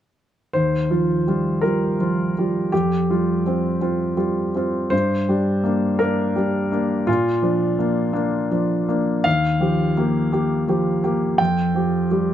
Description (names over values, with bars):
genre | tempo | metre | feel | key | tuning
neoclassical minimalist piano | 55 BPM (dotted quarters) | 6/8 | rubato | unclear | A4 = 439 Hz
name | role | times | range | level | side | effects
warm grand piano | solo | 0.5-12.3 s | Eb2 to G5 | -18 LUFS | equal | none
room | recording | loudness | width
light reverb | none | -18 LUFS | side -10 dB against mid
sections
0.5-12.3 A section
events
none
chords
0.5 Ebadd9; 2.7 Fsus2; 4.9 Gm; 7.1 Bb; 9.3 Ebadd9; 11.4 Fsus2